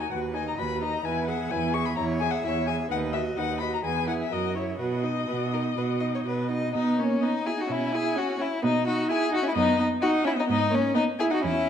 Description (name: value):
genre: quick classical-period movement for string quartet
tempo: 128 BPM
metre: 4/4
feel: straight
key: B major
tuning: A4 = 440 Hz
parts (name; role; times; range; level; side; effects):
- warm violin; melody; 0.0-11.7 s; C#5 to C#6; -32 LUFS; left 9 dB; none
- rich violin; second line; 0.0-11.7 s; C#4 to E5; -29 LUFS; left 3 dB; none
- warm viola; accompaniment; 0.0-11.7 s; A#3 to G#4; -28 LUFS; right 2 dB; none
- rich cello; bass; 0.0-11.7 s; D#2 to B2; -30 LUFS; right 4 dB; none
room: wet recital hall reverb, RT60 1.5 s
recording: dark, warm production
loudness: -24 LUFS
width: side -8 dB against mid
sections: 0.0-6.8 A section; 6.8-11.7 A section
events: none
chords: 0.1 B/D#; 1.0 E; 2.9 B/D#; 3.8 E; 4.3 F#7; 4.8 B; 6.8 E69/B; 8.6 B5; 10.5 G#sus4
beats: 0.11 0.57 | 1.04 1.51 1.98 2.45 | 2.91 3.38 3.85 4.32 | 4.80 5.29 5.78 6.26 | 6.75 7.23 7.70 8.17 | 8.63 9.10 9.56 10.03 | 10.49 10.96 11.43